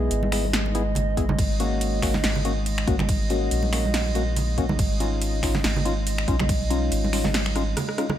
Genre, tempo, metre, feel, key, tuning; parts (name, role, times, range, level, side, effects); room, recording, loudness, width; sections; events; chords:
deep dubstep; 141 BPM; 4/4; swing 55% on 16ths, half-time; A4 = 437 Hz
dark analog pad; sustained chords; 0.0-8.2 s; G#3 to D#5; -30 LUFS; right 1 dB; wide subtle chorus
percussive organ stab; stabs; 0.0-8.1 s; A#3 to G#4; -29 LUFS; left 4 dB; chorus, cassette tape, dub echo
soft dub sub bass; bass; 0.0-7.8 s; G#1 to B1; -26 LUFS; equal
deep house drum kit; drums; 0.1-8.2 s; crash cymbal, finger snaps, hi-hat, rim click, snare drum; -29 LUFS; right 1 dB; overdrive, small room ambience
congas; percussion; 0.2-8.2 s; -30 LUFS; right 3 dB
electronic kick drum; drums; 1.2-6.6 s; -26 LUFS; equal; overdrive, small room ambience
light reverb; -21 LUFS; side -11 dB against mid
0.0-8.2 A section
drop 0.0-8.2; drum fill 7.6-8.2; break 7.8-8.2
0.0 E/G#; 1.4 F#/G#; 4.8 C#add9/G#